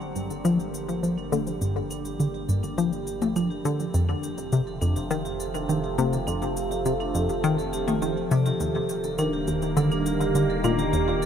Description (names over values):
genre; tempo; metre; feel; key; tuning
ambient, sequencer-driven space music; 103 BPM; 4/4; straight; unclear; A4 = 441 Hz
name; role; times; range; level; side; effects
evolving wavetable pad; sustained chords; 0.0-11.3 s; C3 to Bb3; -30 LUFS; equal; phaser, built-in reverb
vibraphone with hard mallets; arpeggios; 0.0-11.3 s; D4 to D5; -32 LUFS; moving between right 1 dB and right 8 dB; auto-pan, tape echo
round analog bass; bass; 0.0-11.3 s; Eb1 to G1; -39 LUFS; equal; none
tight sequenced synth; riff; 0.2-11.1 s; Eb2 to F3; -25 LUFS; left 1 dB; chorus, tape echo
electronic shaker and toms; percussion; 0.2-11.3 s; none; -33 LUFS; left 4 dB; overdrive, tape echo
room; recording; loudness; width
moderate huge ambient reverb, RT60 7.8 s; none; -23 LUFS; side -8 dB against mid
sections
0.0-11.3 A section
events
fade-in on vibraphone 0.0-11.3; fade-in on ambient pad 0.0-11.3; fade-in on analog synth bass 0.0-11.3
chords
0.0 Gm; 3.9 F; 8.6 Eb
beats
0.45 1.03 | 1.61 2.20 2.78 3.36 | 3.94 4.53 5.11 5.69 | 6.28 6.86 7.44 8.02 | 8.61 9.19 9.77 10.35 | 10.94